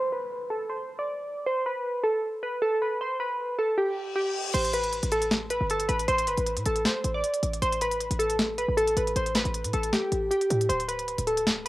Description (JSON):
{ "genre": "hip hop, trap", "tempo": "156 BPM", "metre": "4/4", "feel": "half-time", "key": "unclear", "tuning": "A4 = 437 Hz", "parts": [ { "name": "glassy digital keys", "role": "melody", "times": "0.0-11.7 s", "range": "G4 to D5", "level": "-26 LUFS", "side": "equal", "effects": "chorus, low-pass filter" }, { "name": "downlifter and reverse cymbal", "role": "sound effects", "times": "3.9-4.5 s", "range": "none", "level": "-38 LUFS", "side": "left 6 dB", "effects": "none" }, { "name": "short 808-style bass", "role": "bass", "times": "4.5-11.7 s", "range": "D1 to A2", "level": "-31 LUFS", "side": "equal", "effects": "none" }, { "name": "trap drum kit", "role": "drums", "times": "4.5-11.7 s", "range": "crash cymbal, hi-hat, snare drum", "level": "-29 LUFS", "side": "equal", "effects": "overdrive, cassette tape" } ], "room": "light reverb", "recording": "home recording on cassette", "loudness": "-25 LUFS", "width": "side -17 dB against mid", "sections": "0.0-4.5 A section; 4.5-11.7 B section", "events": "filter sweep on synth keys 0.0-4.5; reverse cymbal 3.9-4.5", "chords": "0.0 N.C.; 4.5 Gadd9; 10.7 Bm7", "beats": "0.31 0.70 1.08 | 1.47 1.85 2.23 2.62 | 3.00 3.39 3.77 4.16 | 4.54 4.93 5.31 5.70 | 6.08 6.47 6.85 7.24 | 7.62 8.01 8.39 8.77 | 9.16 9.54 9.93 10.31 | 10.70 11.08 11.47" }